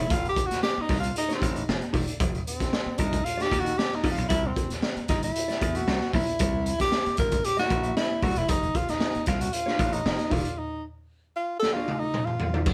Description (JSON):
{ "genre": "funk", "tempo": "115 BPM", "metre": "4/4", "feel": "straight", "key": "unclear", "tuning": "A4 = 440 Hz", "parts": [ { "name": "breathy tenor saxophone", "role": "melody", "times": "0.0-12.6 s", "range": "C4 to Bb4", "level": "-30 LUFS", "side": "equal", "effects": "none" }, { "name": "mellow electric guitar", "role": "accompaniment", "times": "0.0-12.7 s", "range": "Bb3 to E5", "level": "-36 LUFS", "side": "equal", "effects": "none" }, { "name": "slap bass", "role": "bass", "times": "0.0-12.7 s", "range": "E1 to F2", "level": "-32 LUFS", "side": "equal", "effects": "none" }, { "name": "raw garage drum kit", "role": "drums", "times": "0.1-12.7 s", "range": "crash cymbal, hi-hat, kick drum, snare drum, toms", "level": "-30 LUFS", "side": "equal", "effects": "none" } ], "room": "light reverb", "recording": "band playing live in one room", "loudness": "-27 LUFS", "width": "mono", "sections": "0.0-12.7 A section", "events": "tenor saxophone solo 0.0-12.7; break 10.6-12.7; drum fill 11.6-12.7", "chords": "0.1 F13; 4.3 C13; 8.5 F13", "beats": "| 0.10 0.63 1.16 1.68 | 2.21 2.73 3.26 3.78 | 4.31 4.83 5.36 5.88 | 6.40 6.92 7.45 7.97 | 8.49 9.02 9.54 10.06 | 10.58 11.10 11.62 12.14 | 12.66" }